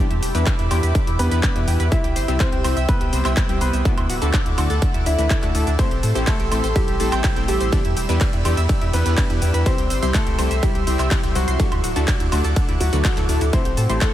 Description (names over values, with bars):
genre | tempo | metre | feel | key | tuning
progressive house | 124 BPM | 4/4 | straight | E minor | A4 = 437 Hz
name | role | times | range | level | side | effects
clear grand piano | melody | 0.0-14.1 s | F#3 to E5 | -27 LUFS | left 1 dB | tape echo
airy breathy pad | sustained chords | 0.0-14.1 s | G4 to E6 | -30 LUFS | right 1 dB | chorus, phaser, sidechain pumping
analog pluck | arpeggios | 0.0-14.1 s | D4 to C6 | -29 LUFS | equal | chorus, sidechain pumping, tape echo
supersaw stab | stabs | 0.0-14.0 s | A2 to B4 | -27 LUFS | left 2 dB | sidechain pumping, tape echo
saturated sub bass | bass | 0.1-14.0 s | D1 to A2 | -21 LUFS | equal | sidechain pumping
big-room dance drum kit | drums | 0.1-14.1 s | handclaps, hi-hat, ride cymbal, shaker, woodblock | -28 LUFS | right 1 dB | overdrive, studio reverb
electronic kick drum | drums | 0.5-14.1 s | none | -20 LUFS | equal | overdrive, studio reverb
room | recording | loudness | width
light reverb, digital ambience | none | -17 LUFS | side -12 dB against mid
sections
0.0-14.1 A section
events
none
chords
0.0 Em7; 1.9 C; 3.9 Dadd9; 5.8 Am7; 7.7 Em7; 9.7 C; 11.6 Dadd9; 13.5 Am7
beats
0.47 0.95 1.43 | 1.92 2.40 2.89 3.37 | 3.85 4.34 4.82 5.30 | 5.79 6.27 6.76 7.24 | 7.72 8.21 8.69 9.18 | 9.66 10.14 10.63 11.11 | 11.60 12.08 12.56 13.05 | 13.53 14.02